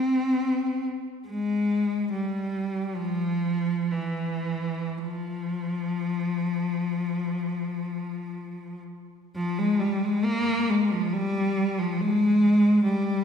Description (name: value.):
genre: classical, free, expressive piece for unaccompanied cello.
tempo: 44-73 BPM.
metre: 4/4.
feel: rubato.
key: F minor.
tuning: A4 = 440 Hz.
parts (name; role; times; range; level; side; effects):
rich cello; solo; 0.0-13.2 s; E3 to C4; -24 LUFS; left 1 dB; none.
room: wet concert hall reverb, RT60 1.9 s.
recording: heard from further back in the room.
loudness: -24 LUFS.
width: side -7 dB against mid.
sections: 0.0-9.4 A section; 9.4-13.2 A section.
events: none.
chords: none.